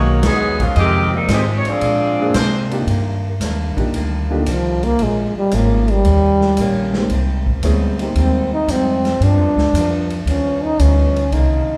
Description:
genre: jazz, big band swing.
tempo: 114 BPM.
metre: 4/4.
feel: swing 69% on 8ths.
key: Eb major.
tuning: A4 = 441 Hz.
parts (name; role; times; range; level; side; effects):
clear saxophone section; melody; 0.0-2.4 s; Eb3 to D5; -21 LUFS; equal; none.
brilliant trombone section; second line; 0.0-2.4 s; Cb3 to G4; -26 LUFS; equal; none.
picked old ladder-braced acoustic guitar; accompaniment; 0.0-11.7 s; G2 to G4; -28 LUFS; equal; none.
clear trumpet section; stabs; 0.0-2.6 s; D4 to Eb5; -29 LUFS; equal; none.
upright bass; bass; 0.0-11.7 s; Ab1 to C3; -20 LUFS; equal; none.
swinging big-band drum kit; drums; 0.2-11.5 s; hi-hat, kick drum, ride cymbal, snare drum; -28 LUFS; equal; none.
clear concert grand piano; accompaniment; 2.2-8.5 s; Ab3 to Ab4; -26 LUFS; equal; none.
warm trombone; melody; 4.3-11.8 s; D3 to Eb4; -20 LUFS; equal; none.
room: wet recital hall reverb, RT60 1.4 s.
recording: heard from further back in the room.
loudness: -17 LUFS.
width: mono.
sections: 0.0-2.9 A section; 2.9-11.8 B section.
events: trombone solo 2.9-11.8.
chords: 0.0 Abm7; 0.8 Fm9; 1.8 Bb9; 2.9 Ebmaj7; 5.0 Bbm7; 6.0 Eb7; 7.1 Abmaj7; 9.2 G7b13.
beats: 0.24 | 0.77 1.30 1.82 2.35 | 2.88 3.40 3.93 4.46 | 4.99 5.51 6.04 6.57 | 7.10 7.63 8.15 8.68 | 9.21 9.74 10.27 10.79 | 11.32.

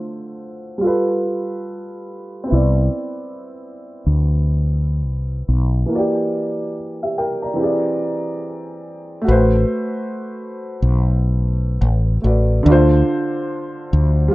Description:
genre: lo-fi hip hop.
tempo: 71 BPM.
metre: 4/4.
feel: swing 64% on 16ths.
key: unclear.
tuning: A4 = 442 Hz.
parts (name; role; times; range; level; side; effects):
dark upright piano; accompaniment; 0.0-14.3 s; D3 to Bb5; -20 LUFS; equal; cassette tape.
mellow fretless electric bass; bass; 2.5-14.3 s; A1 to D2; -15 LUFS; equal; none.
room: light reverb.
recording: rough home demo mix, low-pass filter.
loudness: -16 LUFS.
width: side -19 dB against mid.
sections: 0.0-9.3 A section; 9.3-14.3 B section.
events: filter sweep 0.0-9.3; break 5.9-9.3.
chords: 0.0 Dm7; 0.8 G9; 2.5 Cmaj9; 5.9 Em7b5; 7.6 E7alt; 9.3 Am69; 12.7 Dm7.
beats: 0.82 1.67 | 2.51 3.36 4.20 5.05 | 5.89 6.74 7.58 8.43 | 9.27 10.12 10.96 11.81 | 12.65 13.50 14.34.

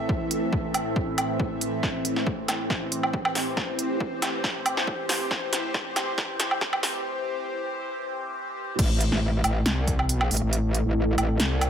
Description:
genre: heavy wobble dubstep.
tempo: 138 BPM.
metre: 4/4.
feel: swing 53% on 16ths, half-time.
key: A minor.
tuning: A4 = 440 Hz.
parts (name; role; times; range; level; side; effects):
evolving wavetable pad; sustained chords; 0.0-11.7 s; A2 to E5; -29 LUFS; equal; phaser, built-in reverb, sidechain pumping.
electronic kick drum; drums; 0.1-10.0 s; none; -29 LUFS; equal; overdrive.
big-room dance drum kit; drums; 0.3-11.7 s; crash cymbal, hi-hat, snare drum, woodblock; -27 LUFS; right 1 dB; overdrive, high-pass filter on hats, high-pass filter on perc, high-pass filter on snare, high-pass filter on cymbals, high-pass filter on room.
metallic wobble bass; bass; 8.8-11.7 s; A1 to C2; -24 LUFS; equal; chorus, overdrive.
room: light reverb.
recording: high-pass filter.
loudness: -24 LUFS.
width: side -8 dB against mid.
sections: 0.0-8.8 A section; 8.8-11.7 B section.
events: build-up 0.0-8.8; filter sweep 0.0-8.8; drum fill 1.8-7.0; break 7.0-8.8; drop 8.8-11.7.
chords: 0.0 Am.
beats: | 0.09 0.53 0.96 1.40 | 1.83 2.27 2.70 3.14 | 3.57 4.00 4.44 4.88 | 5.31 5.74 6.18 6.61 | 7.05 7.48 7.92 8.35 | 8.79 9.22 9.66 10.09 | 10.53 10.96 11.40.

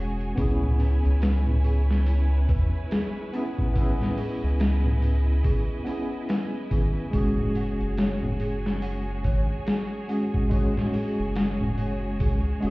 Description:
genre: trip hop.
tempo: 71 BPM.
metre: 4/4.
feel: swing 60% on 16ths.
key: C# minor.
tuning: A4 = 440 Hz.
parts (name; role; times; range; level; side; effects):
tine electric piano; accompaniment; 0.0-12.7 s; G#3 to G#4; -30 LUFS; equal; overdrive, tremolo, vintage 12-bit sampler grit, tape echo.
bright studio violin section; sustained chords; 0.0-12.7 s; E4 to G#5; -39 LUFS; right 1 dB; none.
celesta; arpeggios; 0.0-12.7 s; E4 to F#5; -36 LUFS; right 1 dB; tape echo.
round analog bass; bass; 0.0-12.7 s; E1 to E2; -24 LUFS; equal; none.
boom bap sampler-style drum kit; drums; 0.2-12.7 s; hi-hat, kick drum, snare drum; -26 LUFS; equal; overdrive.
tube shaker and congas; percussion; 0.2-12.7 s; none; -31 LUFS; equal; none.
room: studio reverb.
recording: heard muffled through a wall, stone room reverb, EQ.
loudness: -22 LUFS.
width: side -21 dB against mid.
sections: 0.0-12.7 A section.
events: none.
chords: 0.4 C#m7; 7.1 F#sus2.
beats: | 0.37 1.22 2.06 2.91 | 3.75 4.60 5.44 6.29 | 7.13 7.98 8.82 9.67 | 10.51 11.36 12.20.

